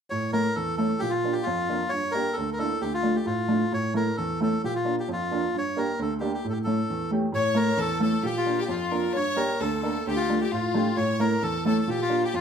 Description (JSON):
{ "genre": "klezmer", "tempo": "132 BPM", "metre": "2/4", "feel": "straight", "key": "A phrygian dominant", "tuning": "A4 = 441 Hz", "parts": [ { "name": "melodica", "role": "melody", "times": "0.1-12.4 s", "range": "F4 to C#5", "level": "-28 LUFS", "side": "left 1 dB", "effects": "none" }, { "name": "warm upright piano", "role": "accompaniment", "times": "0.1-12.4 s", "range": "D2 to Bb4", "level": "-26 LUFS", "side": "right 1 dB", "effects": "none" }, { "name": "clear violin", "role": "second line", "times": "7.4-12.4 s", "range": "F4 to C#5", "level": "-30 LUFS", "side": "left 5 dB", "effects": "none" } ], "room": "wet studio reverb, RT60 0.6 s", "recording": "heard from further back in the room", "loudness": "-23 LUFS", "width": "side -7 dB against mid", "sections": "0.1-7.3 A section; 7.3-12.4 A section", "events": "none", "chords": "0.1 A; 1.0 Bb; 1.9 Gm; 2.8 Dm; 3.7 A; 4.6 Bb; 5.5 Gm; 6.4 A; 8.2 Bb; 9.2 Gm; 10.1 Dm; 11.0 A; 11.9 Bb", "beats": "| 0.10 0.55 | 1.00 1.45 | 1.91 2.36 | 2.81 3.26 | 3.71 4.17 | 4.62 5.07 | 5.53 5.98 | 6.43 6.89 | 7.34 7.79 | 8.25 8.70 | 9.16 9.61 | 10.06 10.52 | 10.97 11.43 | 11.88 12.34" }